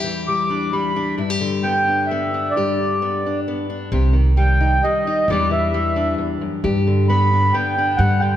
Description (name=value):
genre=acoustic folk duo or small band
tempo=132 BPM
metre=3/4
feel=straight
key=G major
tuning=A4 = 440 Hz
part: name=fingerpicked steel-string acoustic guitar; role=accompaniment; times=0.0-8.4 s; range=E2 to G4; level=-22 LUFS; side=left 4 dB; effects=none
part: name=mellow accordion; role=melody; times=0.3-8.4 s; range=D5 to D6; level=-20 LUFS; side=right 1 dB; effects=none
part: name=upright bass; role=bass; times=3.9-8.4 s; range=C2 to G2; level=-18 LUFS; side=right 1 dB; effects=none
room=moderate concert hall reverb, RT60 2.1 s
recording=none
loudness=-16 LUFS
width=side -11 dB against mid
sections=0.0-3.9 A section; 3.9-8.4 A section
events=none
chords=0.0 Em7; 1.2 G; 3.9 Cm; 5.3 Em7; 6.6 G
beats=0.27 0.73 | 1.19 1.64 2.10 | 2.55 3.01 3.46 | 3.92 4.37 4.83 | 5.28 5.73 6.18 | 6.64 7.09 7.54 | 7.99